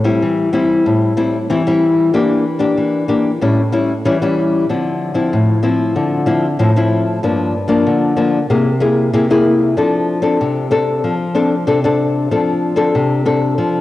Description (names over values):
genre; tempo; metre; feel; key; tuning
samba; 94 BPM; 4/4; straight; F major; A4 = 440 Hz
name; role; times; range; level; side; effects
nylon-string guitar; solo; 0.0-13.8 s; G2 to A4; -13 LUFS; left 2 dB; cassette tape
room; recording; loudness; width
wet lush hall reverb, RT60 2.5 s; home recording on cassette; -13 LUFS; side -15 dB against mid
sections
0.0-13.8 A section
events
none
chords
0.0 Am7; 2.1 Em7b5; 3.4 A7; 4.7 Dm9; 7.2 Gm7; 8.5 Caug7; 9.8 F6